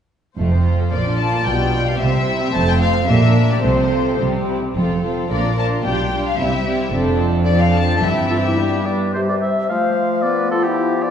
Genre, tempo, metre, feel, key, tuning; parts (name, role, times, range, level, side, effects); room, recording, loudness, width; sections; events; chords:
quick classical-period movement for symphony orchestra; 110 BPM; 2/4; rubato; F major, C major from 6.9 s; A4 = 436 Hz
rich studio violin section; second line; 0.4-8.9 s; G3 to D5; -24 LUFS; left 2 dB
warm studio viola section; accompaniment; 0.4-8.9 s; E3 to F4; -23 LUFS; right 2 dB
rich symphonic cello section; bass; 0.4-8.9 s; F2 to C3; -21 LUFS; right 2 dB
warm studio double bass section; bass; 0.4-8.5 s; F1 to C2; -22 LUFS; right 1 dB
warm studio violin section; melody; 0.9-8.9 s; C5 to A5; -22 LUFS; left 4 dB
hollow small flute group; second line; 8.3-11.1 s; E4 to C5; -22 LUFS; left 3 dB
mellow oboe; second line; 8.3-11.1 s; G4 to F5; -22 LUFS; equal
dark clarinet; second line; 9.2-11.1 s; G3 to B3; -24 LUFS; left 3 dB
clear bassoon; accompaniment; 9.2-11.1 s; C3 to F3; -22 LUFS; left 1 dB
wet scoring stage reverb, RT60 1.5 s; heard from further back in the room, nothing above 10.4 kHz; -15 LUFS; side -8 dB against mid
0.4-9.1 A section; 9.1-11.1 B section
0.4 F; 0.9 Bb; 1.5 G7/B; 2.0 C; 2.5 F; 3.1 Gm/Bb; 3.6 F/C; 4.2 C; 4.8 F; 5.3 Bb; 5.9 G7/B; 6.4 C; 6.9 Dm7/F; 8.0 C/G; 8.6 G; 9.1 C; 9.7 F